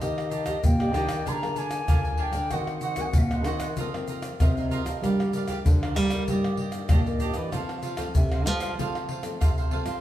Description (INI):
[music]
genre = samba and choro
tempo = 96 BPM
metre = 4/4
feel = straight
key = unclear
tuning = A4 = 440 Hz
[part]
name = wooden flute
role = second line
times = 0.0-3.7 s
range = Eb5 to C6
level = -31 LUFS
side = left 2 dB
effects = none
[part]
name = cavaquinho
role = accompaniment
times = 0.0-10.0 s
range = D4 to Ab5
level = -35 LUFS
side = right 5 dB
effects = none
[part]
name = nylon-string guitar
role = accompaniment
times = 0.0-10.0 s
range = F2 to Ab4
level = -35 LUFS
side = left 4 dB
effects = none
[part]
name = nylon-string guitar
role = bass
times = 0.0-10.0 s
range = Bb2 to G3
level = -29 LUFS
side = right 1 dB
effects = none
[part]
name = egg shaker, surdo, pandeiro and tamborim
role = percussion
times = 0.0-10.0 s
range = none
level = -26 LUFS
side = equal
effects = none
[sound]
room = wet large studio reverb, RT60 1.1 s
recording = band playing live in one room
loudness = -23 LUFS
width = side -13 dB against mid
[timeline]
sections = 0.0-10.0 A section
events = flute solo 0.0-10.0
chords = 0.0 Ebmaj7; 1.3 Bb7/D; 2.5 Ebm6; 3.8 F7sus4; 5.0 Gm7; 6.3 Ebmaj7/G; 7.5 F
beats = | 0.02 0.65 1.27 1.90 | 2.52 3.15 3.77 4.40 | 5.03 5.65 6.28 6.91 | 7.53 8.16 8.78 9.41